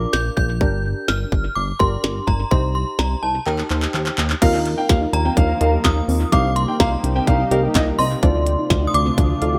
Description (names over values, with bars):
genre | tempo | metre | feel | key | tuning
synth-pop | 126 BPM | 4/4 | straight | unclear | A4 = 438 Hz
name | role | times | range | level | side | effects
synth chime | melody | 0.0-9.6 s | G5 to G6 | -27 LUFS | equal | ensemble chorus, tremolo, analog delay
warm analog keys | accompaniment | 0.0-9.6 s | D4 to F5 | -28 LUFS | equal | chorus
chorused synth bass | bass | 0.0-9.6 s | G1 to Eb2 | -24 LUFS | equal | none
minimal click drum kit | drums | 0.1-9.5 s | crash cymbal, handclaps, hi-hat, kick drum, snare drum | -22 LUFS | equal | overdrive, analog delay
warm concert grand piano | second line | 4.4-8.1 s | Eb5 to G5 | -27 LUFS | equal | analog delay
lush unison pad | sustained chords | 4.8-9.6 s | C3 to Bb4 | -29 LUFS | equal | chorus
soft round pluck | arpeggios | 4.4-9.6 s | C4 to G4 | -30 LUFS | equal | chorus, analog delay
room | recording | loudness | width
light reverb | echo-heavy mix | -19 LUFS | mono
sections
0.0-4.4 A section; 4.4-9.6 B section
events
drum fill 3.5-4.4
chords
0.0 Bb; 0.6 Gm; 2.5 Cm; 3.5 Eb; 4.4 Ebsus2; 6.3 Cm7; 8.2 Dm7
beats
0.13 | 0.61 1.09 1.56 2.04 | 2.51 2.99 3.47 3.94 | 4.42 4.89 5.37 5.85 | 6.32 6.80 7.28 7.75 | 8.23 8.71 9.18